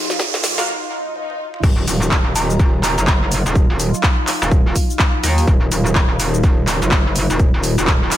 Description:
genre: bass house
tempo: 125 BPM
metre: 4/4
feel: swing 60% on 16ths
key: Eb minor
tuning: A4 = 440 Hz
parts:
  - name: sweeping resonant pad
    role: sustained chords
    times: 0.0-8.2 s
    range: Gb3 to F4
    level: -26 LUFS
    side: right 1 dB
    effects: chorus, sidechain pumping
  - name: riser and swell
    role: sound effects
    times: 0.0-1.6 s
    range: none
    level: -23 LUFS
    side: right 3 dB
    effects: none
  - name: deep dark ambient pad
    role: texture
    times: 0.0-0.7 s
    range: Gb3 to F5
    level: -44 LUFS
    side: right 2 dB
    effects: none
  - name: house drum kit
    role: drums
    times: 0.1-8.2 s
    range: cabasa, crash cymbal, handclaps, hi-hat, snare drum, toms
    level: -20 LUFS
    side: equal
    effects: overdrive, high-pass filter on snare, high-pass filter on perc, high-pass filter on hats, high-pass filter on toms, high-pass filter on cymbals, high-pass filter on room
  - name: electronic kick drum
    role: drums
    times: 0.2-8.0 s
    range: none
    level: -15 LUFS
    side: equal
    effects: overdrive, high-pass filter on kick, high-pass filter on room
  - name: orchestra-hit-like synth stab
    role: stabs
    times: 0.6 s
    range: Bb3 to F5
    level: -26 LUFS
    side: equal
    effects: built-in reverb, sidechain pumping, tape echo
  - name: metallic wobble bass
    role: bass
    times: 1.6-8.1 s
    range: Eb1 to Eb2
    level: -18 LUFS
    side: equal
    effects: distortion, chorus, overdrive, sidechain pumping
  - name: soft synth bell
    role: melody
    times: 2.4-3.0 s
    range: Bb5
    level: -26 LUFS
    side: right 2 dB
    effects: chorus, tape echo
room: little or no reverb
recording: high-pass filter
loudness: -14 LUFS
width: side -12 dB against mid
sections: 0.0-1.6 A section; 1.6-8.2 B section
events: build-up 0.0-1.6; drum fill 0.0-0.7, 1.2-1.6; riser 0.0-0.7; filter sweep 0.0-1.6; break 0.7-1.6; swell 0.7-1.6; drop 1.6-8.2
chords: 0.0 Ebmadd9

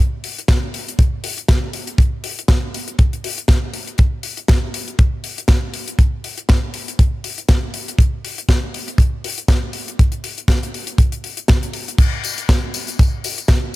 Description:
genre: nu-disco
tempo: 120 BPM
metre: 4/4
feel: swing 56% on 16ths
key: none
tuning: none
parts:
  - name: tight funk drum kit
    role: drums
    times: 0.2-13.6 s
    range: crash cymbal, hi-hat, snare drum, tambourine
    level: -24 LUFS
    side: left 2 dB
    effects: none
  - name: kick drum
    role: drums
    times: 0.5-13.6 s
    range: none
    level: -14 LUFS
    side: equal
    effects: none
room: little or no reverb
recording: none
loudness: -16 LUFS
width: side -19 dB against mid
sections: 0.0-13.8 A section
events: none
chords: none

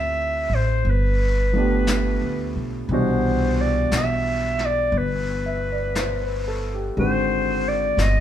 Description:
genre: jazz ballad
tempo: 59 BPM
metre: 4/4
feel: swing 66% on 8ths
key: unclear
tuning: A4 = 440 Hz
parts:
  - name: breathy clarinet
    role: melody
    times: 0.0-8.2 s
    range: B4 to E5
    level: -24 LUFS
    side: left 1 dB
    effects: none
  - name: warm grand piano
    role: accompaniment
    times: 0.0-8.2 s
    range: B2 to E5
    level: -25 LUFS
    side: right 1 dB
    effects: none
  - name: upright bass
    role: bass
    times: 0.0-8.2 s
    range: G1 to D2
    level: -24 LUFS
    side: equal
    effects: none
  - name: jazz brush drum kit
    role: drums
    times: 0.9-8.2 s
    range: brushed snare drum, hi-hat, snare drum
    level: -32 LUFS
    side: left 2 dB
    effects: none
room: moderate studio reverb, RT60 0.9 s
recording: band playing live in one room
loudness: -20 LUFS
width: side -10 dB against mid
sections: 0.0-8.2 A section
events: none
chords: 0.0 Dm11; 0.8 G7; 2.9 Cmaj9#11; 7.0 Ab7#11

